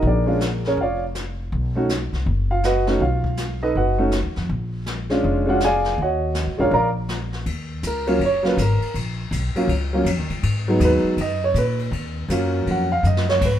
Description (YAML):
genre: jazz piano trio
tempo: 162 BPM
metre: 4/4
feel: swing 64% on 8ths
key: Eb minor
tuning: A4 = 441 Hz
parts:
  - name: warm upright piano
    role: melody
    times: 0.0-13.6 s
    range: Gb3 to Bb5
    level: -20 LUFS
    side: right 1 dB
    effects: none
  - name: upright bass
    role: bass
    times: 0.0-13.6 s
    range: F1 to Bb2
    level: -23 LUFS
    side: left 1 dB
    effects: none
  - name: jazz brush drum kit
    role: drums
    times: 0.0-13.5 s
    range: brushed snare drum, crash cymbal, hi-hat, kick drum, ride cymbal, snare drum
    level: -30 LUFS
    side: left 2 dB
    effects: none
room: light reverb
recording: minimal, uncompressed stereo recording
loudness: -19 LUFS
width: side -10 dB against mid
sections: 0.0-7.5 A section; 7.5-13.6 B section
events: upright piano solo 7.5-13.6; drum fill 13.0-13.4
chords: 0.0 Bb7#9; 1.5 B; 4.5 Bb7#9; 6.0 Ebm9; 6.7 N.C.; 7.5 Ebm7; 10.4 Abm9; 11.9 Ebm9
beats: | 0.04 0.41 0.78 1.16 | 1.53 1.90 2.27 2.64 | 3.01 3.38 3.75 4.13 | 4.50 4.87 5.24 5.61 | 5.98 6.35 6.73 7.10 | 7.47 7.84 8.21 8.58 | 8.96 9.33 9.70 10.07 | 10.44 10.81 11.19 11.56 | 11.93 12.30 12.67 13.04 | 13.41